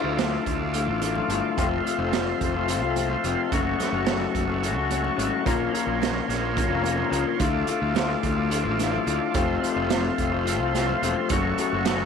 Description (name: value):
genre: psychedelic rock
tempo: 216 BPM (eighths)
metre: 7/8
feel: straight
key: unclear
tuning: A4 = 440 Hz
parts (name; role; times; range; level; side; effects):
- overdriven combo organ; sustained chords; 0.0-12.1 s; A4 to D6; -30 LUFS; right 10 dB; lush chorus
- electric guitar through a small old amp; riff; 0.0-12.1 s; D2 to Bb4; -25 LUFS; left 10 dB; rotary speaker
- fuzz fingered electric bass; bass; 0.0-12.0 s; E1 to D2; -30 LUFS; right 1 dB; overdrive
- congas; percussion; 0.0-12.1 s; none; -40 LUFS; right 12 dB; none
- raw garage drum kit; drums; 0.2-12.0 s; hi-hat, kick drum, snare drum; -29 LUFS; right 6 dB; none
room: light reverb, studio reverb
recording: 1960s-style stereo with parts hard left and right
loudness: -22 LUFS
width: side -6 dB against mid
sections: 0.0-12.1 A section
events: none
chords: 0.0 Dm; 1.6 F; 3.5 F#m; 5.5 Bbmadd9; 7.4 Dm; 9.4 F; 11.3 F#m